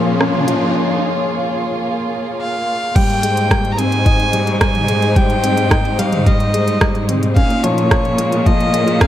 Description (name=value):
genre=piano and strings electronica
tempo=109 BPM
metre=4/4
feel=straight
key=Ab major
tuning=A4 = 440 Hz
part: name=dark studio string section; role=sustained chords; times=0.0-9.1 s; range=G3 to Db5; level=-22 LUFS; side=equal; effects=sidechain pumping
part: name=felt-muted upright piano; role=riff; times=0.0-9.1 s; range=F3 to Eb4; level=-20 LUFS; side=left 2 dB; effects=tape echo
part: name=clear studio cello section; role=bass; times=0.0-9.1 s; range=Ab2 to Bb2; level=-20 LUFS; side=equal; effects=sidechain pumping
part: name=riser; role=sound effects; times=0.0-0.8 s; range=none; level=-24 LUFS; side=right 1 dB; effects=none
part: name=organic electronic drum kit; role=drums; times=0.2-9.1 s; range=crash cymbal, hi-hat, rim click, toms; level=-21 LUFS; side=right 2 dB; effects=small room ambience
part: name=warm violin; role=melody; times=2.4-9.1 s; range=Db5 to Bb5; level=-19 LUFS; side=equal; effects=none
part: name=electronic kick drum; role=drums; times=3.0-9.1 s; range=none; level=-16 LUFS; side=equal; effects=small room ambience
room=moderate echo chamber reverb, RT60 2.3 s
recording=none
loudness=-13 LUFS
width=side -12 dB against mid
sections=0.0-3.0 A section; 3.0-9.1 B section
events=build-up 0.0-3.0; riser 0.0-0.8; break 0.8-3.0; drop 3.0-9.1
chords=0.0 Bbm7; 3.0 Abmaj7; 7.4 Bbm7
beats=0.20 | 0.76 1.31 1.86 2.41 | 2.96 3.51 4.06 4.61 | 5.16 5.71 6.26 6.81 | 7.36 7.91 8.46 9.01